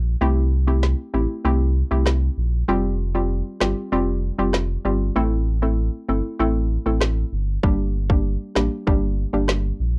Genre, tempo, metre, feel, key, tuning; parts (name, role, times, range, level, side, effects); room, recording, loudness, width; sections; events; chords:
dancehall; 97 BPM; 4/4; straight; G dorian; A4 = 440 Hz
sub bass with octave; bass; 0.0-10.0 s; F1 to C2; -21 LUFS; equal
hollow square pluck; accompaniment; 0.2-9.5 s; G3 to A4; -23 LUFS; equal; chorus
island pop drum kit; drums; 0.8-9.6 s; kick drum, rim click, snare drum; -20 LUFS; equal; overdrive
little or no reverb; dry, gritty hardware recording, cassette tape; -19 LUFS; side -29 dB against mid
0.0-10.0 A section
break 0.0-7.6
0.2 C6; 2.7 Fsus2; 5.2 Am; 7.6 Gm